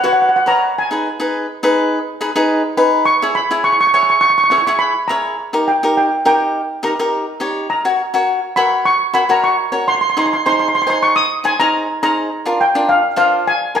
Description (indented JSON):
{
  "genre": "calypso",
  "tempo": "104 BPM",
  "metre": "4/4",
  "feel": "swing 54% on 16ths",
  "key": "G# minor",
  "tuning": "A4 = 443 Hz",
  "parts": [
    { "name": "steel pan", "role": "melody", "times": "0.0-13.8 s", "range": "E#5 to D#6", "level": "-14 LUFS", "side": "right 1 dB", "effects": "none" },
    { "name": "cavaquinho", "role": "accompaniment", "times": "0.0-13.8 s", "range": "D4 to C#5", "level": "-17 LUFS", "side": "left 1 dB", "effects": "none" }
  ],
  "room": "wet large studio reverb, RT60 1.2 s",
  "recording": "band playing live in one room",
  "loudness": "-13 LUFS",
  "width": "side -8 dB against mid",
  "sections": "0.0-13.8 A section",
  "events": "none",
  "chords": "0.0 F#sus4; 0.8 G#m; 3.1 C#m; 5.4 D#; 7.7 F#; 10.0 G#; 12.3 A#",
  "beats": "0.18 | 0.76 1.33 1.91 2.49 | 3.07 3.65 4.22 4.80 | 5.38 5.96 6.54 7.11 | 7.69 8.27 8.85 9.42 | 10.00 10.58 11.15 11.73 | 12.31 12.88 13.46"
}